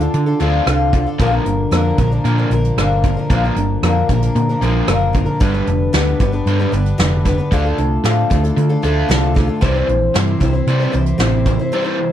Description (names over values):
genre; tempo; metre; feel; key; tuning
folk rock and heartland rock; 114 BPM; 4/4; straight; unclear; A4 = 440 Hz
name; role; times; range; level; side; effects
picked twelve-string acoustic guitar; accompaniment; 0.0-12.1 s; G2 to C5; -20 LUFS; left 4 dB; none
overdriven electric guitar; riff; 0.0-12.1 s; G2 to F4; -20 LUFS; right 2 dB; none
hollow-body short-scale fingered electric bass; bass; 0.0-11.6 s; F1 to D3; -17 LUFS; equal; none
soft brush drum kit; drums; 0.0-11.6 s; hi-hat, kick drum, rim click, snare drum; -20 LUFS; right 1 dB; none
room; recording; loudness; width
little or no reverb; none; -13 LUFS; side -11 dB against mid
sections
0.0-12.1 A section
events
break 11.7-12.1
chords
0.0 Dm; 1.2 Bb; 5.4 G; 7.5 Dm; 9.6 C